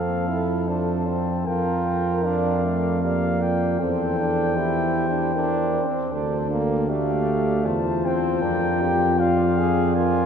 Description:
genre	classical, brass quintet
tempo	78 BPM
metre	3/4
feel	straight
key	unclear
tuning	A4 = 441 Hz
part	mellow trumpet	melody	0.0-10.3 s	F5 to A5	-29 LUFS	left 4 dB	none
part	mellow flugelhorn	second line	0.0-10.3 s	A4 to D5	-32 LUFS	right 6 dB	none
part	clear trombone	accompaniment	0.0-10.3 s	A3 to Ab4	-26 LUFS	right 3 dB	none
part	warm French horn	accompaniment	0.0-10.3 s	F4 to Bb4	-27 LUFS	left 4 dB	none
part	mellow tuba	bass	0.0-10.3 s	D2 to F2	-24 LUFS	right 1 dB	none
room	wet cathedral reverb, RT60 4.7 s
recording	dark, warm production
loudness	-20 LUFS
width	side -7 dB against mid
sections	0.0-10.3 A section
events	none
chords	0.0 F; 1.5 Gm7/F; 3.8 C/E; 6.1 Dm; 8.4 Bb7/F

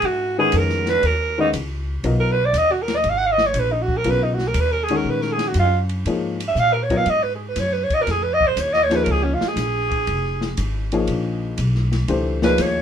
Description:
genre	modal jazz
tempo	119 BPM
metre	4/4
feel	swing 68% on 8ths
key	G# dorian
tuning	A4 = 440 Hz
part	growling alto saxophone	melody	0.0-12.8 s	C#4 to F#5	-19 LUFS	right 2 dB	none
part	upright bass	bass	0.0-12.8 s	E#1 to A#2	-23 LUFS	equal	none
part	open jazz drum kit	drums	0.0-12.7 s	hi-hat, kick drum, ride cymbal, snare drum	-30 LUFS	left 2 dB	none
part	warm upright piano	accompaniment	0.4-12.8 s	C#3 to D#5	-23 LUFS	left 4 dB	none
room	light reverb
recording	minimal, uncompressed stereo recording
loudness	-18 LUFS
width	side -8 dB against mid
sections	0.0-12.8 A section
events	alto saxophone solo 0.0-12.8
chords	0.0 G#m9; 6.1 A#m

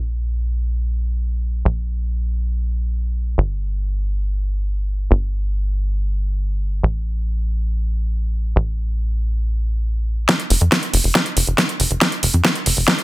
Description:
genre	uplifting trance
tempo	139 BPM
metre	4/4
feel	straight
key	unclear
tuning	A4 = 441 Hz
part	tight sequencer bass	bass	0.0-12.8 s	F1 to F2	-19 LUFS	equal	sidechain pumping
part	big-room dance drum kit	drums	10.3-13.0 s	hi-hat, snare drum	-17 LUFS	equal	overdrive, soft clipping on snare
part	electronic kick drum	drums	10.3-13.0 s	none	-17 LUFS	equal	overdrive, high-pass filter on kick
room	little or no reverb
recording	dense, heavily limited modern master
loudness	-18 LUFS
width	side -19 dB against mid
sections	0.0-10.3 A section; 10.3-13.0 B section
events	build-up 10.3-13.0; drum fill 10.3-13.0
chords	none

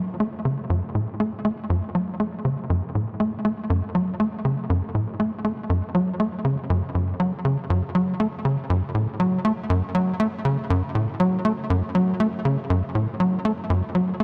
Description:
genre	ambient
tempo	120 BPM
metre	4/4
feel	straight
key	F# minor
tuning	A4 = 439 Hz
part	tight sequencer bass	solo	0.0-14.2 s	F#2 to A3	-24 LUFS	equal	analog chorus, tape echo
room	wet huge ambient reverb, RT60 8.3 s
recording	none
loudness	-24 LUFS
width	mono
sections	0.0-14.2 A section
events	none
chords	none

